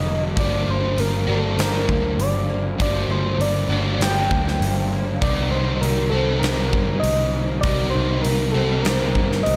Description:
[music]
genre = rock, shoegaze and dream pop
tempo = 99 BPM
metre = 4/4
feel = straight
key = G minor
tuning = A4 = 440 Hz
[part]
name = soft struck synth lead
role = melody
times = 0.0-9.6 s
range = A4 to G5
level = -28 LUFS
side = equal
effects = chorus, slapback echo
[part]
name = fingerpicked twelve-string acoustic guitar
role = arpeggios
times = 0.0-9.6 s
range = Eb3 to Eb4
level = -33 LUFS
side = equal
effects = ensemble chorus, slapback echo
[part]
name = electric guitar through a small old amp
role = riff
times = 0.0-9.6 s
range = G2 to G4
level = -39 LUFS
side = equal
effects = none
[part]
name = overdriven semi-hollow guitar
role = riff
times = 0.0-9.6 s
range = G2 to G4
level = -27 LUFS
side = equal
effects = analog chorus
[part]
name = vintage muted picked electric bass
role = bass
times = 0.0-9.6 s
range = F1 to G2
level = -25 LUFS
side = equal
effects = none
[part]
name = huge arena drum kit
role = drums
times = 0.4-9.6 s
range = hi-hat, kick drum, snare drum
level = -29 LUFS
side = equal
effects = none
[sound]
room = little or no reverb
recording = faint mains hum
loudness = -21 LUFS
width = mono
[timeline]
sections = 0.0-9.6 A section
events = none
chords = 0.4 Gm7; 5.2 Cm7

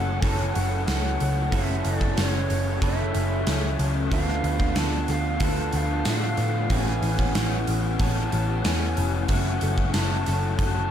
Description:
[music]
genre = rock, shoegaze and dream pop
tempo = 93 BPM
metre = 4/4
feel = straight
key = unclear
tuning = A4 = 440 Hz
[part]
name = concert flute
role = melody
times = 0.0-10.9 s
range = C#5 to A5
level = -32 LUFS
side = right 2 dB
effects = diffuse ambient delay
[part]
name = fingerpicked twelve-string acoustic guitar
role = arpeggios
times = 0.0-10.9 s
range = E3 to A4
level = -36 LUFS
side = left 7 dB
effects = analog chorus, diffuse ambient delay
[part]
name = electric guitar through a small old amp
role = riff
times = 0.0-10.9 s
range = F#2 to A4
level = -32 LUFS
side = right 10 dB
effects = reverse reverb
[part]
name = raw garage guitar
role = riff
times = 0.0-10.9 s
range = F#2 to F#4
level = -30 LUFS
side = left 8 dB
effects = overdrive, ensemble chorus
[part]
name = vintage muted picked electric bass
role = bass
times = 0.0-10.9 s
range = F1 to A2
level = -26 LUFS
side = equal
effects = none
[part]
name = gated 80s drum kit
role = drums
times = 0.2-10.7 s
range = hi-hat, kick drum, snare drum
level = -28 LUFS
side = equal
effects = none
[sound]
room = moderate huge ambient reverb, RT60 5.3 s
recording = dreamy mix soaked in reverb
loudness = -22 LUFS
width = side -9 dB against mid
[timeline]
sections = 0.0-10.9 A section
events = none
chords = 0.0 F#m7; 4.1 Dm6; 6.7 Amaj9; 9.3 F#m7

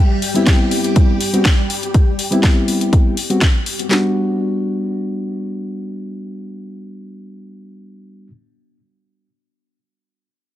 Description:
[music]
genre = nu-disco, nu disco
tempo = 122 BPM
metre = 4/4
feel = swing 53% on 16ths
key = unclear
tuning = A4 = 440 Hz
[part]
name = string machine, full ensemble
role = sustained chords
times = 0.0-3.9 s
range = G3 to G4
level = -24 LUFS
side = equal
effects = phaser, ensemble chorus, sidechain pumping
[part]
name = house drum kit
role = drums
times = 0.2-3.9 s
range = hi-hat, snare drum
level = -21 LUFS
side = left 2 dB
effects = overdrive, studio reverb
[part]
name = mellow reed electric piano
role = accompaniment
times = 0.3-8.3 s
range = G3 to F#4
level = -20 LUFS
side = left 1 dB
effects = low-pass filter, ping-pong delay
[part]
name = house drum kit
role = drums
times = 0.5-4.0 s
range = handclaps, kick drum, snare drum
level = -13 LUFS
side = equal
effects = overdrive, studio reverb
[sound]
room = digital ambience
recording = none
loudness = -14 LUFS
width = side -13 dB against mid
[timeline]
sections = 0.0-3.9 A section; 3.9-7.8 B section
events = none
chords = 0.0 Gadd11; 3.9 Gmaj7

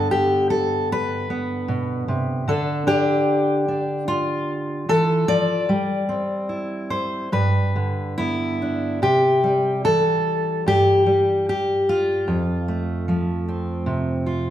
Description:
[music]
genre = folk, solo fingerstyle acoustic guitar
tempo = 74 BPM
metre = 4/4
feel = rubato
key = C major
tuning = A4 = 440 Hz
[part]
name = fingerpicked steel-string acoustic guitar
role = solo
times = 0.0-14.5 s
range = F2 to D5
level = -19 LUFS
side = equal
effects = none
[sound]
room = wet large studio reverb, RT60 1.3 s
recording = band playing live in one room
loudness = -19 LUFS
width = side -11 dB against mid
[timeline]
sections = 0.0-9.0 A section; 9.0-14.5 B section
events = none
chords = 0.0 G; 2.5 Dm; 5.7 C/G; 7.3 G; 9.0 C; 12.3 F

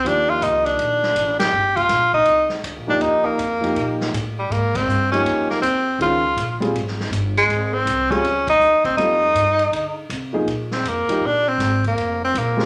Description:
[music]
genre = modal jazz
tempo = 161 BPM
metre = 4/4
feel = swing 64% on 8ths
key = unclear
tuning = A4 = 440 Hz
[part]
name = bright tenor saxophone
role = melody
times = 0.0-12.7 s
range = G3 to G4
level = -20 LUFS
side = equal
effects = none
[part]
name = warm grand piano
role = accompaniment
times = 0.0-12.7 s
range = Eb3 to A4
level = -26 LUFS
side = equal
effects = none
[part]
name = upright bass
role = bass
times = 0.0-12.7 s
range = F1 to D3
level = -29 LUFS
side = equal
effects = none
[part]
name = swinging big-band drum kit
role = drums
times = 0.1-12.6 s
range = hi-hat, kick drum, ride cymbal, snare drum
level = -34 LUFS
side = equal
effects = none
[sound]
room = wet large studio reverb, RT60 0.9 s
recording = none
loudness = -19 LUFS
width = mono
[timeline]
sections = 0.0-10.5 A section; 10.5-12.7 B section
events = band accent 1.3, 4.7, 8.4; tenor saxophone solo 10.5-12.7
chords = 0.0 Ebmaj9; 4.5 Dbmaj9; 9.0 F13; 10.5 Bb7sus2

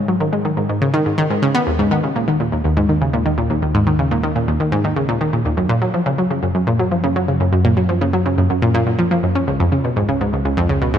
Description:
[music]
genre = ambient, sequencer-driven space music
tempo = 123 BPM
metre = 4/4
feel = straight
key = Eb minor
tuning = A4 = 439 Hz
[part]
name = analog pluck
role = riff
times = 0.0-11.0 s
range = Db2 to Db4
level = -15 LUFS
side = equal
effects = chorus, tape echo
[part]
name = analog drone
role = bass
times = 0.0-11.0 s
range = Db2 to Ab2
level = -25 LUFS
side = equal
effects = chorus
[sound]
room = moderate lush hall reverb, RT60 2.5 s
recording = none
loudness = -15 LUFS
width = side -9 dB against mid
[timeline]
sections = 0.0-1.7 A section; 1.7-11.0 B section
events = filter sweep on synth arpeggio sound 0.0-1.7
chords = 0.0 Ab5; 1.7 Eb5; 5.6 Gb; 9.5 Db

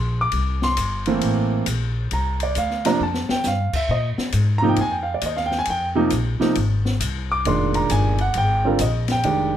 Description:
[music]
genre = modal jazz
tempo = 135 BPM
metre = 4/4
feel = swing 66% on 8ths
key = unclear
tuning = A4 = 440 Hz
[part]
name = warm grand piano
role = accompaniment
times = 0.0-9.6 s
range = Bb2 to D6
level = -21 LUFS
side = right 2 dB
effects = none
[part]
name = upright bass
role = bass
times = 0.0-9.6 s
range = F1 to Bb2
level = -23 LUFS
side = left 1 dB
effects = none
[part]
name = open jazz drum kit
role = drums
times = 0.3-9.4 s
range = crash cymbal, hi-hat, kick drum, ride cymbal, snare drum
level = -29 LUFS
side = left 3 dB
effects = none
[sound]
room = light reverb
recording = none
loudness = -19 LUFS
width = side -10 dB against mid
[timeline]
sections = 0.0-9.6 A section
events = drum fill 3.0-3.5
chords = 0.0 C9sus4; 3.9 Bb9sus4

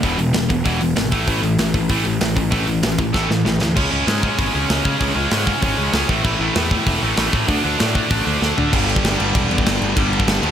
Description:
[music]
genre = punk rock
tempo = 193 BPM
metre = 4/4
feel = straight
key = unclear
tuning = A4 = 440 Hz
[part]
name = tight distorted guitar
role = riff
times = 0.0-10.5 s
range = E2 to D4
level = -19 LUFS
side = equal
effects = distortion
[part]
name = fuzz picked electric bass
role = bass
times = 0.0-10.5 s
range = E1 to D3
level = -22 LUFS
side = equal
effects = overdrive
[part]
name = tight metal drum kit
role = drums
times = 0.0-10.5 s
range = crash cymbal, hi-hat, kick drum, snare drum, toms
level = -21 LUFS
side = equal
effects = none
[sound]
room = light reverb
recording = none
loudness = -16 LUFS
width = side -9 dB against mid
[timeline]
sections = 0.0-3.8 A section; 3.8-8.7 B section; 8.7-10.5 C section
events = drum fill 3.1-3.8, 8.4-8.7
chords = 0.0 E; 1.1 A5; 3.8 C#5; 6.1 A5; 7.5 D5; 8.7 G5

